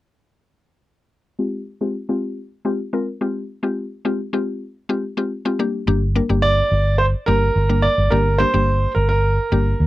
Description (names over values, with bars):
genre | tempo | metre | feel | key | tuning
dance-pop | 107 BPM | 4/4 | straight | F dorian | A4 = 439 Hz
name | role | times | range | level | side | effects
mallet-like synth pluck | accompaniment | 1.4-9.8 s | G3 to Bb4 | -22 LUFS | left 2 dB | chorus, low-pass filter
vintage muted fingered electric bass | bass | 5.9-9.9 s | G1 to Eb2 | -18 LUFS | equal | none
warm concert grand piano | melody | 6.4-9.9 s | Bb4 to D5 | -19 LUFS | right 2 dB | none
room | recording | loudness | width
little or no reverb | dry, close 1970s-style studio recording | -18 LUFS | side -16 dB against mid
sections
1.4-5.9 A section; 5.9-9.9 B section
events
filter sweep on synth pluck 1.4-5.9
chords
1.4 Fmadd9; 5.6 Gm